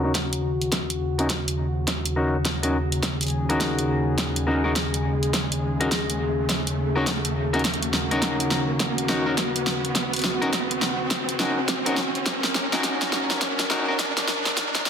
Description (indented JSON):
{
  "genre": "glitch hop",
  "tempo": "104 BPM",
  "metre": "4/4",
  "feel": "swing 62% on 16ths",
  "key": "Eb minor",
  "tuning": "A4 = 439 Hz",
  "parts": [
    { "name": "warm analog pad", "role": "sustained chords", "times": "0.0-14.9 s", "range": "Eb2 to Bb4", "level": "-27 LUFS", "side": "equal", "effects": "chorus, vintage 12-bit sampler grit, sidechain pumping" },
    { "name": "semi-hollow electric guitar", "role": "stabs", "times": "0.0-14.0 s", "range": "Db4 to Bb4", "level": "-27 LUFS", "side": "left 1 dB", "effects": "vintage 12-bit sampler grit, sidechain pumping, low-pass filter, digital delay" },
    { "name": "riser", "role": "sound effects", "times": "0.5-14.9 s", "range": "none", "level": "-31 LUFS", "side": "right 2 dB", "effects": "none" },
    { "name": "electronic kick drum", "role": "drums", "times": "0.1-14.7 s", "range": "none", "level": "-34 LUFS", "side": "equal", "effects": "none" },
    { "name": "pop drum kit", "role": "drums", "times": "0.1-14.9 s", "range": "hi-hat, snare drum", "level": "-25 LUFS", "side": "right 1 dB", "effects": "soft clipping on snare" }
  ],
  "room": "moderate digital room reverb, RT60 1.3 s",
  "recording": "dense, heavily limited modern master, high-pass filter",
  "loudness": "-21 LUFS",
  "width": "side -7 dB against mid",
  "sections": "0.0-14.9 A section",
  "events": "build-up 0.0-14.9; drum fill 0.0-14.9; filter sweep on clean electric guitar 0.0-14.9; filter sweep 0.0-14.9; riser 0.5-14.9",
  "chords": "0.0 Ebm7"
}